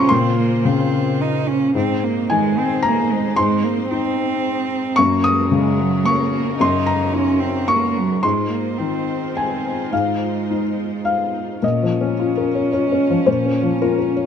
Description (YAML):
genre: neoclassical piano and strings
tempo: 110 BPM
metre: 3/4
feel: rubato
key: Bb minor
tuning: A4 = 440 Hz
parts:
  - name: rich cello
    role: second line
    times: 0.0-14.3 s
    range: Gb3 to Eb4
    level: -22 LUFS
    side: right 6 dB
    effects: none
  - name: felt-muted upright piano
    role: accompaniment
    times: 0.0-14.3 s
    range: Gb2 to Eb6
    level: -18 LUFS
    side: left 4 dB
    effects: none
  - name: rich studio string section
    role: sustained chords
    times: 0.0-14.3 s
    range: Db3 to C5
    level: -29 LUFS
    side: right 1 dB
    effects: none
room: light reverb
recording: dark, warm production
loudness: -16 LUFS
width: side -8 dB against mid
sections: 0.0-11.6 A section; 11.6-14.3 B section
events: none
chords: 0.0 Bbmadd9; 1.7 Ab; 5.0 Gb6; 8.2 Fm7/Ab; 11.6 Bbm